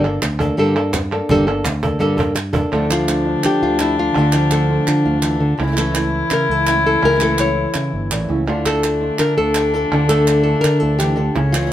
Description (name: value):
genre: flamenco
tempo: 167 BPM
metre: 4/4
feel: straight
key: unclear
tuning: A4 = 439 Hz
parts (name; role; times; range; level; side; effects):
- flamenco guitar; melody; 0.0-11.7 s; Bb2 to C#5; -17 LUFS; equal; none
- fingered electric bass; bass; 0.0-11.7 s; G1 to D3; -22 LUFS; right 1 dB; none
- palmas hand claps; percussion; 0.0-11.7 s; none; -25 LUFS; right 4 dB; none
- cajon; percussion; 0.2-2.6 s; none; -24 LUFS; right 1 dB; none
- rich cello; second line; 2.7-11.7 s; C#4 to E4; -21 LUFS; left 3 dB; none
- flamenco guitar; stabs; 2.7-11.7 s; C#3 to F4; -26 LUFS; right 4 dB; none
room: moderate studio reverb, RT60 0.6 s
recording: band playing live in one room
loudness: -14 LUFS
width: side -12 dB against mid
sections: 0.0-2.7 A section; 2.7-11.7 B section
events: drum fill 2.0-2.7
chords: 0.0 Gmadd9; 2.7 Dm; 5.6 A/C#; 8.5 Dm